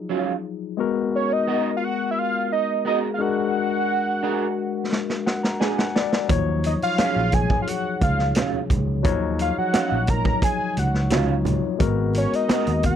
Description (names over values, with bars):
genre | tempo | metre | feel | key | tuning
lush 1970s-style soul | 87 BPM | 4/4 | straight | unclear | A4 = 441 Hz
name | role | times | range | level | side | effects
barky tine electric piano | accompaniment | 0.0-13.0 s | E#3 to A#5 | -26 LUFS | moving between left 10 dB and left 3 dB | auto-pan
electric guitar through a small old amp | riff | 0.1-12.7 s | F#3 to A#4 | -26 LUFS | right 8 dB | ensemble chorus
fat analog lead | melody | 1.2-13.0 s | C#5 to A#5 | -24 LUFS | right 1 dB | chorus, phaser
vibraphone with medium mallets | texture | 1.5-13.0 s | F#4 to G#4 | -35 LUFS | left 1 dB | none
vintage drum kit | drums | 4.9-13.0 s | hi-hat, kick drum, snare drum | -23 LUFS | right 1 dB | none
fingered electric bass | bass | 6.3-13.0 s | G#1 to D#2 | -24 LUFS | right 1 dB | none
congas | percussion | 6.3-13.0 s | none | -31 LUFS | right 5 dB | none
room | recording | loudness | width
little or no reverb | dry, close 1970s-style studio recording | -20 LUFS | side -9 dB against mid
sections
0.0-13.0 A section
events
drum fill 4.9-6.3; tine electric piano fill 4.9-6.3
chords
0.0 D#m9; 0.8 G#m9; 3.2 A#aug7; 6.3 D#m9; 11.8 G#m9